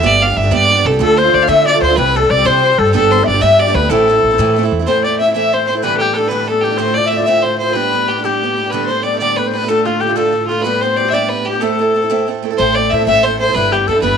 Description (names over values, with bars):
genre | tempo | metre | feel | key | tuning
celtic folk, Celtic jig | 124 BPM (dotted quarters) | 6/8 | straight | A minor | A4 = 440 Hz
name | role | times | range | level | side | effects
bright fiddle | melody | 0.0-14.2 s | F4 to F5 | -15 LUFS | right 2 dB | none
picked steel-string acoustic guitar | accompaniment | 0.0-14.2 s | D2 to A4 | -19 LUFS | right 10 dB | none
upright bass | bass | 0.0-4.8, 12.6-14.2 s | G1 to D3 | -18 LUFS | left 1 dB | none
bright reedy baroque flute | second line | 1.0-14.2 s | F4 to E5 | -16 LUFS | left 9 dB | none
muted cello | drone | 4.9-12.6 s | A2 | -27 LUFS | left 1 dB | stereo widening
room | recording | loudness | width
moderate echo chamber reverb, RT60 1.6 s, small room ambience | 1960s-style stereo with parts hard left and right | -11 LUFS | side -7 dB against mid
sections
0.0-4.9 A section; 4.9-12.6 B section; 12.6-14.2 B section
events
none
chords
0.0 G; 1.0 Dm; 2.0 C; 2.9 G; 3.9 Am; 5.8 G6; 6.8 Dm7; 7.8 G; 8.7 Gadd9; 9.7 Dm; 10.6 G; 11.6 Am; 13.5 G6